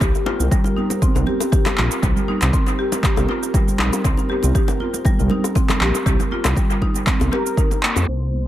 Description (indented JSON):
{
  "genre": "afro house",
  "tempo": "119 BPM",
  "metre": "4/4",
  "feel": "swing 54% on 16ths",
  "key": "C minor",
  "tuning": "A4 = 440 Hz",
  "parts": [
    { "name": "warm analog pad", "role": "sustained chords", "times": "0.0-8.5 s", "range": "C4 to Eb5", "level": "-29 LUFS", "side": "right 2 dB", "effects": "chorus, sidechain pumping" },
    { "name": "marimba with medium hard mallets", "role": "arpeggios", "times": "0.0-8.0 s", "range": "G3 to G4", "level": "-24 LUFS", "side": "left 1 dB", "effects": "sidechain pumping, dub echo" },
    { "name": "dark detuned saw bass", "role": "bass", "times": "0.0-8.5 s", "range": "Bb1 to F2", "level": "-20 LUFS", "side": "equal", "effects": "sidechain pumping" },
    { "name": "electronic kick drum", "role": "drums", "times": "0.0-7.7 s", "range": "none", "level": "-19 LUFS", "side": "equal", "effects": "none" },
    { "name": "electronic shaker and handclaps", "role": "drums", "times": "0.0-8.1 s", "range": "none", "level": "-25 LUFS", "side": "right 1 dB", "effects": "low-pass filter on perc, low-pass filter on snare, low-pass filter on room, dub echo" },
    { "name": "bongos", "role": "percussion", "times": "0.0-8.1 s", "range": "none", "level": "-30 LUFS", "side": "left 6 dB", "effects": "dub echo" },
    { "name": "congas", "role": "percussion", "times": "0.0-8.4 s", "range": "none", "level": "-29 LUFS", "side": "right 4 dB", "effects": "none" },
    { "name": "expressive synth lead", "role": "melody", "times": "7.3-8.5 s", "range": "Bb4 to C5", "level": "-27 LUFS", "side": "equal", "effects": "analog chorus, dub echo" }
  ],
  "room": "light reverb",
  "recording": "echo-heavy mix, low-pass filter",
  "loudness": "-16 LUFS",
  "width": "side -13 dB against mid",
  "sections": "0.0-8.1 A section",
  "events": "band accent 7.8",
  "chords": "0.0 C7(no3)"
}